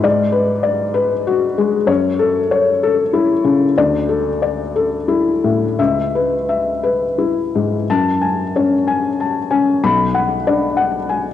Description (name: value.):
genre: neoclassical minimalist piano.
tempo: 56-67 BPM (dotted quarters).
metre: 6/8.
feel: rubato.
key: F# minor.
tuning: A4 = 442 Hz.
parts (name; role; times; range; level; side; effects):
felt-muted upright piano; solo; 0.0-11.3 s; B1 to B5; -14 LUFS; left 3 dB; cassette tape.
room: wet lush hall reverb, RT60 2.8 s.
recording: home recording on cassette, nothing above 10.3 kHz.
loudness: -14 LUFS.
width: side -10 dB against mid.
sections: 0.0-7.9 A section; 7.9-11.3 B section.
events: none.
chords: 0.0 G#m7b5; 1.9 F#m7; 3.8 Dsus2; 5.8 C#m7; 7.9 F#madd9; 9.8 Bm.